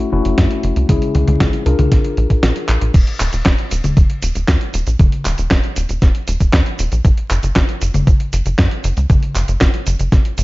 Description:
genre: italo disco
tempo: 117 BPM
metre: 4/4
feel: straight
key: unclear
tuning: A4 = 439 Hz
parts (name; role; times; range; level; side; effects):
- tine electric piano; stabs; 0.0-2.9 s; G#3 to A#4; -20 LUFS; left 4 dB; vintage 12-bit sampler grit, tape echo
- tight sequencer bass; bass; 0.1-10.4 s; D#1 to F#2; -16 LUFS; equal; tube saturation
- dusty soul sampler-style drum kit; drums; 0.2-10.4 s; cabasa, crash cymbal, handclaps, hi-hat, snare drum, toms; -20 LUFS; equal; none
- electronic kick drum; drums; 0.4-10.2 s; none; -14 LUFS; equal; overdrive
room: little or no reverb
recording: dark, warm production, vinyl crackle, nothing above 7.6 kHz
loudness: -13 LUFS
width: side -20 dB against mid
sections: 0.0-2.9 A section; 2.9-10.4 B section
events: kick drops out 2.4-2.9; drum fill 2.7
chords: 0.0 F#m7; 0.9 C#m; 1.9 A#7; 2.9 D#5; 7.0 F#5

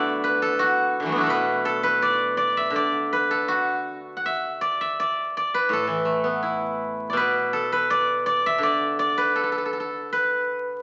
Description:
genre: chinese traditional, Chinese solo plucked strings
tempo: 82 BPM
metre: 2/4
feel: rubato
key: A zhi mode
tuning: A4 = 439 Hz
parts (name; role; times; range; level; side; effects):
- steel-string zither; solo; 0.0-10.8 s; A2 to F#5; -24 LUFS; equal; none
room: moderate large studio reverb, RT60 1.3 s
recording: very old 78 rpm record, vinyl crackle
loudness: -23 LUFS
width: mono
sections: 0.0-10.1 A section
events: none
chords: none

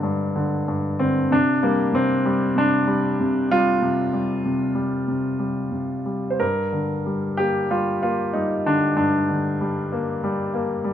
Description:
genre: classical, lyrical solo piano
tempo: 94 BPM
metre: 4/4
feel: uneven beats, rubato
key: G minor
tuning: A4 = 442 Hz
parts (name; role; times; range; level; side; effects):
- clear baby grand piano; solo; 0.0-10.9 s; G2 to C5; -20 LUFS; equal; none
room: light reverb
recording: dark, warm production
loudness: -20 LUFS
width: side -10 dB against mid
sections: 0.0-10.9 A section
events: none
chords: 0.0 Gm; 1.3 Csus2; 6.4 Gm

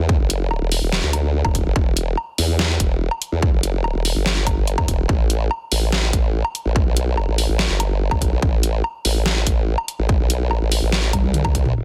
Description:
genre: heavy wobble dubstep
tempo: 144 BPM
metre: 4/4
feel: half-time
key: E minor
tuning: A4 = 439 Hz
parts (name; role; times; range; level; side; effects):
- formant-sweep wobble bass; bass; 0.0-11.8 s; E1 to E2; -22 LUFS; equal; chorus, overdrive
- electronic kick drum; drums; 0.1-11.6 s; none; -21 LUFS; equal; none
- dubstep drum kit; drums; 0.3-11.7 s; hi-hat, snare drum, toms, woodblock; -25 LUFS; equal; overdrive
room: little or no reverb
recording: dense, heavily limited modern master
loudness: -20 LUFS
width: mono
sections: 0.0-11.8 A section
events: drop 0.0-11.8; drum fill 11.1-11.8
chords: none

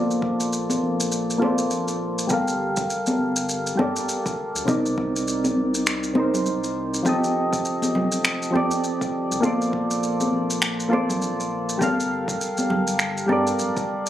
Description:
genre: sunset chillout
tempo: 101 BPM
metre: 4/4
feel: swing 58% on 16ths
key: unclear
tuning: A4 = 440 Hz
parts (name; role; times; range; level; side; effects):
- soft electric-piano-like synth keys; accompaniment; 0.0-14.1 s; C3 to F5; -23 LUFS; equal; chorus, auto-pan, low-pass filter, digital delay
- round analog bass; bass; 0.0-13.7 s; D1 to G2; -34 LUFS; left 1 dB; none
- shaker and finger snaps; drums; 0.1-14.1 s; none; -27 LUFS; equal; none
- electronic kick drum; drums; 0.2-13.9 s; none; -31 LUFS; equal; none
- congas; percussion; 0.7-13.4 s; none; -27 LUFS; left 1 dB; none
room: light reverb, small room ambience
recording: recorded on a phone in the room, club reverb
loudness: -21 LUFS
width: side -12 dB against mid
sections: 0.0-14.1 A section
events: filter sweep on synth keys 0.0-14.1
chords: 0.0 Bbmaj9; 2.3 Gm7; 4.7 Cm9; 7.1 F7; 9.4 Bbmaj9; 11.8 Gm7

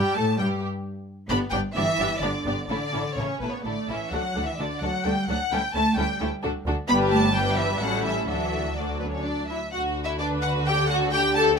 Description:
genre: quick classical-period movement for string orchestra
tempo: 130 BPM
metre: 3/4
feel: rubato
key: D major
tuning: A4 = 439 Hz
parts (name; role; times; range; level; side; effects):
- rich studio violin section; melody; 0.0-11.4 s; B4 to B5; -27 LUFS; left 1 dB; none
- rich studio violin section; second line; 0.0-11.6 s; B3 to D5; -28 LUFS; left 2 dB; none
- warm studio viola section; accompaniment; 0.0-11.6 s; F#3 to B4; -31 LUFS; equal; none
- warm studio cello section; bass; 0.0-11.6 s; B2 to B3; -30 LUFS; right 1 dB; none
- clear studio double bass section; bass; 0.2-11.6 s; G1 to A2; -30 LUFS; right 1 dB; none
room: moderate studio reverb, RT60 0.8 s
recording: none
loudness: -23 LUFS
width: side -6 dB against mid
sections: 0.0-9.7 A section; 9.7-11.6 A section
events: none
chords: 0.0 Gsus2; 0.9 N.C.; 1.3 G; 2.7 A; 4.1 D; 5.5 A7/D; 6.4 D5; 6.9 G; 7.8 A7; 8.3 D

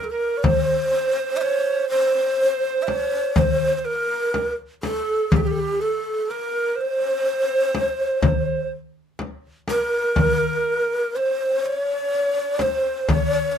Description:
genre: Turkish makam ensemble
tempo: 123 BPM (eighths)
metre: 10/8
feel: straight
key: C makam hicaz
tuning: A4 = 445 Hz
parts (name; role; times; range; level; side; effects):
- breathy low ney; melody; 0.0-13.6 s; G4 to E5; -22 LUFS; left 2 dB; none
- breathy tenor recorder; second line; 0.0-13.6 s; G4 to Db5+20c; -25 LUFS; right 8 dB; none
- darbuka; percussion; 0.4-13.3 s; none; -24 LUFS; left 2 dB; none
- frame drum; percussion; 0.4-13.3 s; none; -23 LUFS; left 2 dB; none
room: light reverb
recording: minimal, uncompressed stereo recording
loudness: -19 LUFS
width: side -8 dB against mid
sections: 0.4-13.6 A section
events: none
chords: none

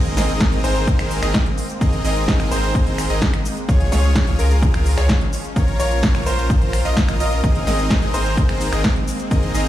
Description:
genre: EDM, festival progressive house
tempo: 128 BPM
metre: 4/4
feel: straight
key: Ab major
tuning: A4 = 440 Hz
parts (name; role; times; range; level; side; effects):
- lush unison pad; sustained chords; 0.0-9.7 s; F3 to Db4; -30 LUFS; right 1 dB; chorus, sidechain pumping
- bright grand piano; arpeggios; 0.0-9.7 s; Bb4 to Eb5; -28 LUFS; right 1 dB; sidechain pumping, digital delay
- supersaw chords; riff; 0.0-9.7 s; C4 to Eb5; -24 LUFS; equal; sidechain pumping, digital delay
- saturated sub bass; bass; 0.0-9.7 s; Ab1 to Db2; -21 LUFS; equal; sidechain pumping
- impact; sound effects; 0.0-1.8 s; none; -32 LUFS; equal; none
- big-room dance drum kit; drums; 0.1-9.7 s; finger snaps, hi-hat, shaker, snare drum; -25 LUFS; equal; overdrive
- electronic kick drum; drums; 0.4-9.4 s; none; -19 LUFS; equal; overdrive
room: little or no reverb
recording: played on a big sound system in a bare room, large studio reverb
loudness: -16 LUFS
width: side -13 dB against mid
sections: 0.0-9.7 A section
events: impact 0.0-1.8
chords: 0.0 Abadd9; 3.7 Db; 5.6 Bbm; 7.4 Abadd9

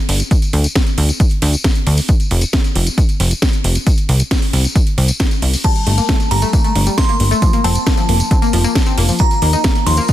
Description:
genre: uplifting trance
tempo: 135 BPM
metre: 4/4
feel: straight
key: G minor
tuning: A4 = 441 Hz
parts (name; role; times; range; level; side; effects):
- plucky analog bass; bass; 0.1-10.0 s; F1 to Eb2; -14 LUFS; equal; sidechain pumping
- techno drum kit; drums; 0.1-10.1 s; crash cymbal, hi-hat, snare drum; -21 LUFS; equal; sidechain pumping on hats, sidechain pumping on cymbals
- tambourine; percussion; 0.2-10.1 s; none; -26 LUFS; left 3 dB; none
- electronic kick drum; drums; 0.3-10.1 s; none; -15 LUFS; equal; none
- glassy synth bell; second line; 5.6-10.1 s; A5 to C6; -20 LUFS; right 2 dB; chorus, digital delay
- analog pluck; arpeggios; 5.6-10.1 s; F3 to Eb4; -20 LUFS; left 5 dB; chorus, sidechain pumping, digital delay
room: digital ambience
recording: dense, heavily limited modern master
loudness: -12 LUFS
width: side -13 dB against mid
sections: 0.0-10.1 A section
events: none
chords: 0.0 N.C.; 5.6 Gmadd9; 7.4 Fsus4; 9.2 Eb5

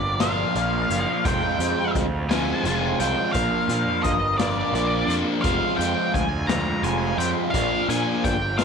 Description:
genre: psychedelic rock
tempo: 57 BPM (dotted quarters)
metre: 6/8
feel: straight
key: F dorian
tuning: A4 = 440 Hz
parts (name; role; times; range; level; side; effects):
- octave-fuzz lead guitar; melody; 0.0-8.6 s; D5 to Bb5; -26 LUFS; left 1 dB; distortion, slapback echo
- combo organ; sustained chords; 0.0-8.6 s; Ab3 to F5; -33 LUFS; right 14 dB; lush chorus
- fuzz picked electric bass; bass; 0.0-8.6 s; F1 to Bb2; -28 LUFS; equal; overdrive
- tanpura; drone; 0.0-8.6 s; F2 to F3; -34 LUFS; equal; none
- crunchy overdriven guitar; riff; 0.2-8.6 s; F3 to F4; -24 LUFS; equal; phaser
- raw garage drum kit; drums; 0.2-8.6 s; hi-hat, kick drum, snare drum; -29 LUFS; left 3 dB; none
room: light reverb, studio reverb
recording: 1960s-style stereo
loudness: -20 LUFS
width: side -6 dB against mid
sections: 0.0-8.6 A section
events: none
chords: 0.0 Bb; 1.3 Fm; 3.3 Bb; 5.4 Fm; 7.5 Bb

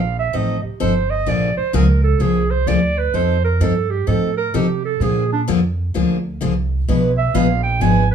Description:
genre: acoustic string swing (jazz manouche)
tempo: 128 BPM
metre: 4/4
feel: swing 65% on 8ths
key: unclear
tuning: A4 = 441 Hz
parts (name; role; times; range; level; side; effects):
- breathy clarinet; second line; 0.0-8.1 s; D4 to G#5; -21 LUFS; right 7 dB; none
- upright bass; bass; 0.0-8.1 s; G1 to C3; -19 LUFS; right 2 dB; none
- picked steel-string acoustic guitar; accompaniment; 0.3-8.0 s; B2 to B4; -20 LUFS; left 4 dB; none
room: moderate studio reverb, RT60 0.7 s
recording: small room ambience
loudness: -16 LUFS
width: side -8 dB against mid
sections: 0.0-8.1 A section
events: clarinet solo 0.0-8.1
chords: 0.0 F7; 1.3 Bb7; 3.1 F7; 5.0 Bb7; 6.9 Bdim7

